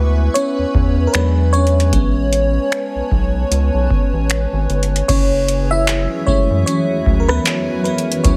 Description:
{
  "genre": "contemporary R&B",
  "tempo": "76 BPM",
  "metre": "4/4",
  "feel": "swing 58% on 16ths",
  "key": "F# minor",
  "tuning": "A4 = 439 Hz",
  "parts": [
    { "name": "FM electric piano with soft pad layer", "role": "accompaniment", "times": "0.0-8.4 s", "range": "F#3 to E5", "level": "-21 LUFS", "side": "equal", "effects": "chorus" },
    { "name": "granular cloud pad", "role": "sustained chords", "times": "0.0-8.4 s", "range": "E3 to C#6", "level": "-28 LUFS", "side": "equal", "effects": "built-in reverb, sidechain pumping" },
    { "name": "round analog bass", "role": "bass", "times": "0.0-8.4 s", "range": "F#1 to F#2", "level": "-19 LUFS", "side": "equal", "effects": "none" },
    { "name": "booming analog drum machine", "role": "drums", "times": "0.4-8.4 s", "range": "crash cymbal, finger snaps, handclaps, hi-hat, kick drum, rim click", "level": "-20 LUFS", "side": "equal", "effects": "overdrive" }
  ],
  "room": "digital ambience",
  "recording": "heavily compressed radio sound",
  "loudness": "-16 LUFS",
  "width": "mono",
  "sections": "0.0-5.1 A section; 5.1-8.4 B section",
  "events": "FM electric piano solo 0.0-5.1, 5.1-8.4",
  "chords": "0.0 C#m7; 1.1 E7; 1.9 Amaj9; 5.1 F#m9"
}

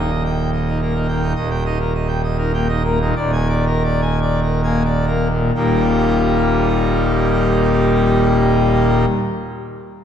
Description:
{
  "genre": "classical, organ toccata",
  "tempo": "62-108 BPM",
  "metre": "3/4",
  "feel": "straight",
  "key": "Eb major",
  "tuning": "A4 = 439 Hz",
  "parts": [
    { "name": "pipe organ, full organ", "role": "solo", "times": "0.0-9.1 s", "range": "Eb1 to Ab5", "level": "-15 LUFS", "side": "equal", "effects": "none" }
  ],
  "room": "wet church reverb, RT60 2.8 s",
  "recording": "dark, warm production",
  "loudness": "-15 LUFS",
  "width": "side -8 dB against mid",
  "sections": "0.0-1.4 A section; 1.4-5.5 B section; 5.5-10.0 C section",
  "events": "slowing down 0.5-5.5",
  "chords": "0.0 Eb; 3.2 Bb7/Eb; 5.5 Eb"
}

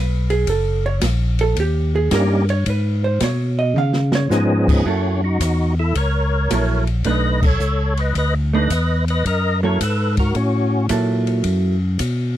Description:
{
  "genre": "soul jazz organ trio",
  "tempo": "109 BPM",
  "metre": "4/4",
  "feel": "swing 68% on 8ths",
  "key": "F# mixolydian",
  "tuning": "A4 = 441 Hz",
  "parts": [
    { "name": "vintage hollow-body jazz guitar", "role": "accompaniment", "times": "0.0-11.8 s", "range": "F#3 to E#5", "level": "-22 LUFS", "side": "right 5 dB", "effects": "none" },
    { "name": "tonewheel organ", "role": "bass", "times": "0.0-12.4 s", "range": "F#1 to C#3", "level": "-19 LUFS", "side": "equal", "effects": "chorus vibrato, slow rotary speaker" },
    { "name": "open jazz drum kit", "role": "drums", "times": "0.3-12.2 s", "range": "crash cymbal, hi-hat, kick drum, ride cymbal, snare drum, toms", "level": "-25 LUFS", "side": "equal", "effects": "none" },
    { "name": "percussive tonewheel organ", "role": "melody", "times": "2.1-10.9 s", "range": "E#3 to D#5", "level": "-21 LUFS", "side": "left 1 dB", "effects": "slow rotary speaker, overdrive, chorus vibrato" }
  ],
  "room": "little or no reverb",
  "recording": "dry, close 1970s-style studio recording",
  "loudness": "-16 LUFS",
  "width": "side -12 dB against mid",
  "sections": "0.0-4.9 A section; 4.9-12.4 B section",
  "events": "hollow-body jazz guitar solo 0.0-4.9; drum fill 3.8-4.3; band accent 7.3",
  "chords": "0.5 F#; 1.6 D#7; 2.7 G#m; 3.8 C#7; 4.9 F#7#9; 7.1 B7#9; 9.2 F#7#9"
}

